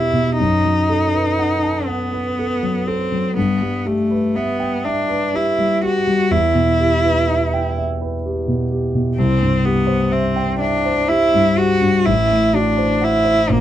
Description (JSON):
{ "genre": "classical, romantic duo for cello and grand piano", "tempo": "41 BPM (dotted quarters)", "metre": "6/8", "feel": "rubato", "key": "E minor", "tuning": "A4 = 441 Hz", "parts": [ { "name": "clear cello", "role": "melody", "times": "0.0-13.6 s", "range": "A3 to F#4", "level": "-18 LUFS", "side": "equal", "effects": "none" }, { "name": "warm concert grand piano", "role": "accompaniment", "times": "0.0-13.6 s", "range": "A1 to A5", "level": "-18 LUFS", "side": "equal", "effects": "none" } ], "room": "moderate studio ambience, RT60 0.5 s", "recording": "dark, warm production", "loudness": "-15 LUFS", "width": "side -11 dB against mid", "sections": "0.0-13.6 A section", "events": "none", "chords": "0.4 B7/F#; 3.4 Em/G; 6.3 Em; 9.2 C; 12.1 F#dim/A", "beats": "| 0.39 1.87 | 3.36 4.84 | 6.32 7.76 | 9.17 10.59 | 12.07 13.51" }